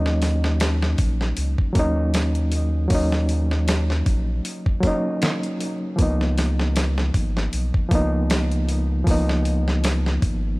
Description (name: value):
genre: trip hop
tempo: 78 BPM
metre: 4/4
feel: swing 56% on 16ths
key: Eb minor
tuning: A4 = 436 Hz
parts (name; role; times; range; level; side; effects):
- overdriven reed electric piano; accompaniment; 0.0-10.6 s; F3 to Eb4; -24 LUFS; equal; harmonic tremolo, vintage 12-bit sampler grit, low-pass filter, tape echo
- warm sub bass; bass; 0.0-10.6 s; Ab1 to Eb2; -22 LUFS; equal; none
- dusty soul sampler-style drum kit; drums; 0.1-10.4 s; hi-hat, kick drum, snare drum; -23 LUFS; equal; none
room: digital ambience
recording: vinyl crackle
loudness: -19 LUFS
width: side -23 dB against mid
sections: 0.0-10.6 A section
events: none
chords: 0.0 Ebm7; 6.0 Db13